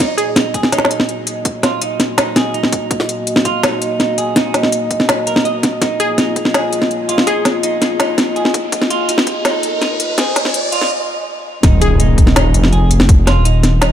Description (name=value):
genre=half-time drum and bass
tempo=165 BPM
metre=4/4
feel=half-time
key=Eb minor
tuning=A4 = 440 Hz
part: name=dark analog pad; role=sustained chords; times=0.0-10.9 s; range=Bb3 to Eb5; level=-21 LUFS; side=left 1 dB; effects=chorus, sidechain pumping
part: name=semi-hollow electric guitar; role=arpeggios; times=0.0-13.9 s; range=Eb4 to Eb5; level=-22 LUFS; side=right 5 dB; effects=tape echo
part: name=electronic kick drum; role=drums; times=0.0-13.2 s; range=none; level=-14 LUFS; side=equal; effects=high-pass filter on kick, small room reverb
part: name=organic electronic drum kit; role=drums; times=0.0-13.9 s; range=hi-hat, snare drum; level=-16 LUFS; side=equal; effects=overdrive, small room reverb
part: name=glassy wavetable pluck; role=melody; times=0.2-0.5, 6.0-7.5, 11.8-12.2 s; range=Ab4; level=-23 LUFS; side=left 2 dB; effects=chorus, ping-pong delay
part: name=riser and impact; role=sound effects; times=7.7-13.1 s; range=none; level=-21 LUFS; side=equal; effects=none
part: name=dark detuned saw bass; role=bass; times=11.6-13.9 s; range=Eb1 to F1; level=-12 LUFS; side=equal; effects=none
room=light reverb, digital ambience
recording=high-pass filter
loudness=-12 LUFS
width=side -10 dB against mid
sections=0.0-11.6 A section; 11.6-13.9 B section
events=build-up 0.0-11.6; riser 7.7-10.9; break 10.9-11.6; drop 11.6-13.9; impact 11.6-13.1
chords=0.0 Ebm; 5.8 Bbsus4; 11.6 Eb5